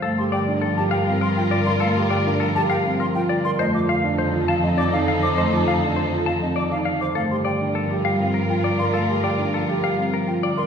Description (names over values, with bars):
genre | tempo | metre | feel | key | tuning
classical, minimalist pattern music | 101 BPM | 3/4 | straight | G minor | A4 = 440 Hz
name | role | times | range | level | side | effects
semi-hollow electric guitar | melody | 0.0-10.6 s | A4 to A5 | -26 LUFS | left 5 dB | none
marimba with soft mallets | accompaniment | 0.0-10.6 s | D3 to A3 | -25 LUFS | left 1 dB | none
warm studio violin section | sustained chords | 0.0-10.5 s | Eb4 to Bb4 | -28 LUFS | left 2 dB | none
concert flute | arpeggios | 0.0-10.6 s | Eb5 to D6 | -28 LUFS | left 1 dB | none
warm cello | bass | 0.0-10.6 s | F2 to G2 | -27 LUFS | right 2 dB | none
dark grand piano | arpeggios | 0.2-10.7 s | C4 to C5 | -26 LUFS | right 4 dB | none
room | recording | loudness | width
wet recital hall reverb, RT60 1.6 s | recorded in a church or concert hall | -19 LUFS | side -7 dB against mid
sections
0.0-10.7 A section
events
none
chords
0.0 Gm9; 3.6 F7; 7.2 Gm9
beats
| 0.03 0.62 1.21 | 1.81 2.40 3.00 | 3.59 4.18 4.78 | 5.37 5.97 6.56 | 7.16 7.75 8.34 | 8.94 9.53 10.12